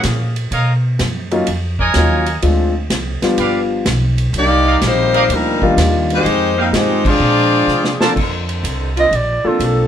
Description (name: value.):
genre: jazz, big band swing.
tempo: 126 BPM.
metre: 4/4.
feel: swing 68% on 8ths.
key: unclear.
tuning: A4 = 441 Hz.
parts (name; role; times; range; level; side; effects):
bright saxophone section; melody; 0.0-0.4, 4.4-8.0 s; G3 to D5; -16 LUFS; left 3 dB; none.
clear trombone section; second line; 0.0-0.4, 4.4-8.0 s; Eb3 to Eb4; -20 LUFS; right 1 dB; none.
upright bass; bass; 0.0-9.9 s; G1 to C3; -18 LUFS; equal; none.
vintage drum kit; drums; 0.0-9.8 s; crash cymbal, hi-hat, kick drum, ride cymbal, snare drum; -22 LUFS; right 1 dB; none.
bright trumpet section; stabs; 0.5-8.1 s; G4 to A5; -19 LUFS; right 2 dB; none.
warm concert grand piano; accompaniment; 1.3-9.9 s; Eb3 to A4; -17 LUFS; left 2 dB; none.
warm saxophone section; sustained chords; 8.2-9.1 s; D3 to A4; -25 LUFS; left 1 dB; none.
breathy clarinet; melody; 9.0-9.9 s; F4 to Eb5; -16 LUFS; right 3 dB; none.
room: moderate studio reverb, RT60 0.8 s.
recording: band playing live in one room.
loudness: -13 LUFS.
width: side -9 dB against mid.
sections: 0.0-8.2 A section; 8.2-9.9 B section.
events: band accent 7.0; drum fill 7.7-8.2; clarinet solo 8.2-9.9.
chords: 0.0 Gb9 (rootless); 0.5 Bmaj9#11; 2.4 Dm7b5; 3.4 G7; 4.3 Cm11; 6.3 Fm9; 7.2 Bb9; 8.2 Bbmaj9.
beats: 0.04 | 0.51 0.99 1.47 1.95 | 2.43 2.90 3.38 3.86 | 4.34 4.82 5.29 5.77 | 6.25 6.73 7.21 7.69 | 8.16 8.64 9.12 9.60.